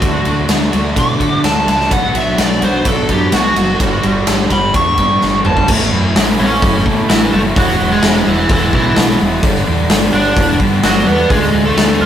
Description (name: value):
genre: quiet-loud alternative rock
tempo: 128 BPM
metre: 4/4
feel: straight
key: A major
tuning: A4 = 439 Hz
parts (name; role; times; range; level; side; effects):
- biting lead guitar; melody; 0.0-12.1 s; E3 to D6; -16 LUFS; right 1 dB; overdrive
- twelve-string electric guitar; arpeggios; 0.0-5.7 s; G2 to G4; -21 LUFS; right 1 dB; tremolo
- fuzz guitar; riff; 0.0-12.1 s; G2 to F4; -21 LUFS; right 4 dB; distortion
- tight distorted guitar; riff; 0.0-12.1 s; G2 to F4; -22 LUFS; left 4 dB; distortion
- growling fingered electric bass; bass; 0.0-12.1 s; E1 to D3; -19 LUFS; equal; overdrive
- huge arena drum kit; drums; 0.0-11.9 s; crash cymbal, hi-hat, kick drum, ride cymbal, snare drum, toms; -15 LUFS; left 1 dB; none
room: moderate stone room reverb, RT60 1.1 s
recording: rough rehearsal-room recording, warm saturation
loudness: -11 LUFS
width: side -10 dB against mid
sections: 0.0-5.7 A section; 5.7-12.1 B section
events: lead electric guitar solo 0.0-5.7; drum fill 5.2-5.7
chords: 0.0 D; 1.9 Bm; 3.8 G; 5.7 A; 7.6 E; 9.4 G; 11.3 Dm